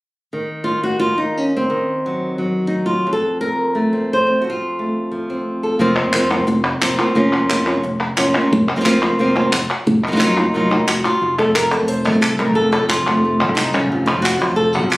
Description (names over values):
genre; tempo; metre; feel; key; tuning
flamenco; 177 BPM; 4/4; straight; F phrygian dominant; A4 = 440 Hz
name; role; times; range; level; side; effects
flamenco guitar; melody; 0.3-15.0 s; F2 to C5; -16 LUFS; equal; plate reverb
fingered electric bass; bass; 5.8-15.0 s; F1 to F2; -23 LUFS; equal; none
palmas hand claps; percussion; 6.0-15.0 s; none; -20 LUFS; equal; none
room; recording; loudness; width
moderate stone room reverb, RT60 1.0 s; recorded on a phone in the room, studio reverb; -15 LUFS; side -20 dB against mid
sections
0.3-5.8 A section; 5.8-11.2 B section; 11.2-15.0 C section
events
none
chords
0.3 Ebm; 3.1 F; 5.8 Fsus4; 11.2 F